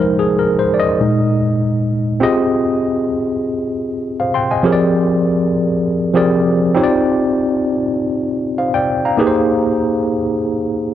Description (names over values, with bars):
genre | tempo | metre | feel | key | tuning
soul | 99 BPM | 4/4 | swing 54% on 16ths | F dorian | A4 = 441 Hz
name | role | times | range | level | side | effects
tine electric piano | solo | 0.0-10.9 s | Bb2 to C6 | -14 LUFS | equal | overdrive, medium stereo tremolo
room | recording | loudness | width
moderate plate reverb, RT60 3.1 s | dark, warm production | -14 LUFS | side -11 dB against mid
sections
0.0-2.2 A section; 2.2-10.9 B section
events
tine electric piano solo 0.0-2.2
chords
0.0 Fm7; 1.0 Bb7sus4; 2.2 Fm9; 4.6 Bb13/F; 6.8 Ebmaj13; 9.2 Abmaj9